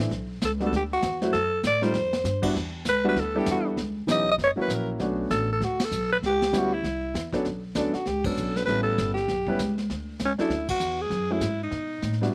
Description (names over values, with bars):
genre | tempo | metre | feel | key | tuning
jazz, small-group swing and bop | 196 BPM | 4/4 | swing 61% on 8ths | B minor | A4 = 440 Hz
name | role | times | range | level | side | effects
warm grand piano | accompaniment | 0.0-12.3 s | E3 to B4 | -30 LUFS | equal | none
upright bass | bass | 0.0-12.3 s | F#1 to B2 | -33 LUFS | equal | none
vintage brush drum kit | drums | 0.0-12.3 s | brushed snare drum, crash cymbal, hi-hat, kick drum, ride cymbal, snare drum | -36 LUFS | equal | none
growling alto saxophone | melody | 0.4-12.2 s | C#4 to D#5 | -28 LUFS | equal | slapback echo
room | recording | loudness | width
little or no reverb | recorded outdoors, with no room sound | -26 LUFS | mono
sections
0.0-7.4 A section; 7.4-12.3 B section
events
drum fill 1.9-2.2; band accent 5.8, 8.2, 10.7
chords
0.1 Gmaj7 (rootless); 1.3 F#dim; 1.9 Fsus2; 2.6 Em7; 3.8 C#m7b5; 4.4 F#7; 5.0 Bm7; 6.2 C#m7b5; 6.8 C69; 7.4 Bm7; 8.7 A7; 9.9 Dmaj7; 11.1 F#m9; 11.7 B7